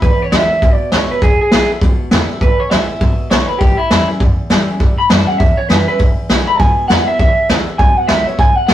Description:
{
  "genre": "rockabilly",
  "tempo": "201 BPM",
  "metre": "4/4",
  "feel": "swing 63% on 8ths",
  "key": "E mixolydian",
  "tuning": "A4 = 439 Hz",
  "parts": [
    { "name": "electric guitar through a small old amp", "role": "melody", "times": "0.0-8.7 s", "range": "E4 to B5", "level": "-15 LUFS", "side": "right 1 dB", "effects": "none" },
    { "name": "picked steel-string acoustic guitar", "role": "accompaniment", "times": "0.0-8.7 s", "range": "E2 to F#4", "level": "-21 LUFS", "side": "left 1 dB", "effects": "none" },
    { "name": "upright bass", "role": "bass", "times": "0.0-8.7 s", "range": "E1 to A2", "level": "-22 LUFS", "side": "equal", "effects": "none" },
    { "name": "vintage brush drum kit", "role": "drums", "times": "0.0-8.7 s", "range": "hi-hat, kick drum, snare drum", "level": "-13 LUFS", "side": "equal", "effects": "none" }
  ],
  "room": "moderate stone room reverb, RT60 1.0 s",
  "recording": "rough rehearsal-room recording, warm saturation",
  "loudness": "-10 LUFS",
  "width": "side -12 dB against mid",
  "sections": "0.0-8.7 A section",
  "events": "clean electric guitar solo 0.0-8.7",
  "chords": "0.0 E7; 3.6 A7; 6.0 E7",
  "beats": "| 0.02 0.32 0.62 0.92 | 1.22 1.52 1.82 2.12 | 2.42 2.71 3.01 3.31 | 3.61 3.91 4.21 4.50 | 4.80 5.10 5.40 5.70 | 6.00 6.30 6.59 6.89 | 7.19 7.49 7.79 8.09 | 8.38 8.68"
}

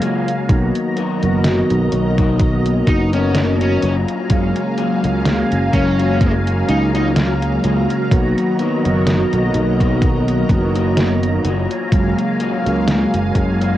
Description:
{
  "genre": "vaporwave",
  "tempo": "63 BPM",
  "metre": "4/4",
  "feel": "swing 55% on 16ths",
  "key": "F# major",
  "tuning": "A4 = 440 Hz",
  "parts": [
    { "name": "mellow synth brass", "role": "accompaniment", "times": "0.0-13.8 s", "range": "C#3 to E#5", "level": "-19 LUFS", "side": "equal", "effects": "analog chorus, cassette tape, analog delay" },
    { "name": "soft string machine", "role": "sustained chords", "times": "0.0-13.8 s", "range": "F#3 to A#5", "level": "-23 LUFS", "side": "right 1 dB", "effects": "phaser, ensemble chorus, cassette tape" },
    { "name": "electric guitar at the edge of break-up", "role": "riff", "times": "0.0-13.8 s", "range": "A#3 to A#4", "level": "-28 LUFS", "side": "left 8 dB", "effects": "analog chorus, cassette tape, analog delay" },
    { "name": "detuned 8-bit digital drum machine", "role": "drums", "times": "0.0-13.8 s", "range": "hi-hat, snare drum", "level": "-22 LUFS", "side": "equal", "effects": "overdrive" },
    { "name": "sustaining fretless electric bass", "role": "bass", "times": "0.5-13.8 s", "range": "F#1 to C#2", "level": "-19 LUFS", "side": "equal", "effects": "tube saturation, wide subtle chorus" },
    { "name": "electronic kick drum", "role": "drums", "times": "0.5-13.6 s", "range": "none", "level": "-17 LUFS", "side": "equal", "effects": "overdrive" },
    { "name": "fuzz lead guitar", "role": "melody", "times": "2.9-7.1 s", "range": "C#4 to D#4", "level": "-23 LUFS", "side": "left 2 dB", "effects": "distortion, vintage 12-bit sampler grit, cassette tape, tape echo" }
  ],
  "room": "light reverb",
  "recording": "home recording on cassette",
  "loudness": "-14 LUFS",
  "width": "side -13 dB against mid",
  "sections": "0.0-13.8 A section",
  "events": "none",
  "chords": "0.5 Bmaj7; 3.8 F#maj9; 8.1 Bmaj7; 11.4 F#maj9",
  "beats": "| 0.49 1.45 2.40 3.35 | 4.30 5.25 6.21 7.16 | 8.11 9.06 10.02 10.97 | 11.92 12.87"
}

